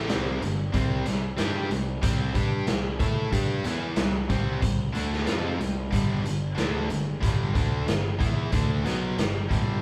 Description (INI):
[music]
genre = classic rock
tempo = 92 BPM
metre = 4/4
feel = straight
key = G major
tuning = A4 = 439 Hz
[part]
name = crunchy overdriven guitar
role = riff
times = 0.0-9.8 s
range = G2 to A4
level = -32 LUFS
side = equal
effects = none
[part]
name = tight distorted guitar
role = riff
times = 0.0-9.8 s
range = G2 to A4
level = -37 LUFS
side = equal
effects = distortion
[part]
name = fuzz picked electric bass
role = bass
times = 0.0-9.8 s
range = G1 to A2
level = -35 LUFS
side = equal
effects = overdrive
[part]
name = raw garage drum kit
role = drums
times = 0.1-9.7 s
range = hi-hat, kick drum, snare drum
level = -29 LUFS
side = equal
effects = none
[sound]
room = moderate large studio reverb, RT60 0.9 s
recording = band playing live in one room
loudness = -26 LUFS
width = mono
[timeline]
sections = 0.0-9.8 A section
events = none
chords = 0.0 G5; 0.7 C5; 5.9 G